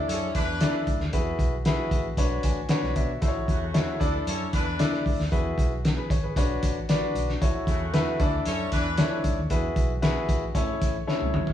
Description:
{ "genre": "uptempo 1960s-style soul", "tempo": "115 BPM", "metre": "4/4", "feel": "straight", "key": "A major", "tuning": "A4 = 439 Hz", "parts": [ { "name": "clear horn section", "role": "second line", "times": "0.0-9.2 s", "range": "C#3 to C#5", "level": "-32 LUFS", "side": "equal", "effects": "none" }, { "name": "clear concert grand piano", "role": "accompaniment", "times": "0.0-11.5 s", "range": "C#4 to G#5", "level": "-28 LUFS", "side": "left 2 dB", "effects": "none" }, { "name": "vintage muted fingered electric bass", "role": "bass", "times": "0.1-11.5 s", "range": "G1 to B2", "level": "-30 LUFS", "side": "equal", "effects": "none" }, { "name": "cloth-damped thuddy drum kit", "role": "drums", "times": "0.1-11.5 s", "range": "hi-hat, kick drum, snare drum, toms", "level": "-26 LUFS", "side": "equal", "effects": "none" } ], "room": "moderate stone room reverb, RT60 1.1 s", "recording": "band playing live in one room, studio reverb", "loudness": "-23 LUFS", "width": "side -11 dB against mid", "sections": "0.0-11.5 A section", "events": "grand piano fill 2.2-3.2; drum fill 11.1-11.5", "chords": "0.0 Dsus2; 1.1 Eadd9; 2.2 Bmadd9; 3.2 A6; 4.0 Dsus2; 5.3 Eadd9; 6.4 Bmadd9; 7.4 A6; 8.2 Dsus2; 9.5 Eadd9; 10.6 A" }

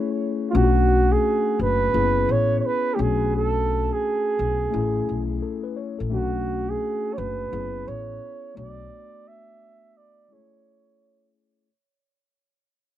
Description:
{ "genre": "hip hop", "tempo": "86 BPM", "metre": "4/4", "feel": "swing 62% on 16ths", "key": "B dorian", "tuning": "A4 = 443 Hz", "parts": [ { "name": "mellow tine electric piano", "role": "accompaniment", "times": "0.0-11.7 s", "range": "G#3 to C#5", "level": "-27 LUFS", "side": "left 8 dB", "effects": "low-pass filter, cassette tape" }, { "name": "breathy flugelhorn", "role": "melody", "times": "0.5-11.4 s", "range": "E#4 to E5", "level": "-24 LUFS", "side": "right 4 dB", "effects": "low-pass filter, cassette tape, analog delay" }, { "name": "upright bass", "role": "bass", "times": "0.5-8.9 s", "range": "F#1 to B1", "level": "-25 LUFS", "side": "left 1 dB", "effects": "none" } ], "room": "moderate booth ambience, RT60 0.2 s", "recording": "home recording on cassette", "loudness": "-20 LUFS", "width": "side -12 dB against mid", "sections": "0.5-11.7 A section", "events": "break 0.0-0.5, 8.9-11.7; fade-out 0.5-11.7", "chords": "0.0 Amaj7; 0.5 Bm9; 1.9 F#9sus4; 3.0 Bm9; 4.7 Amaj9; 6.1 Bm9; 7.5 F#9sus4; 8.6 Bm7; 10.3 Amaj7" }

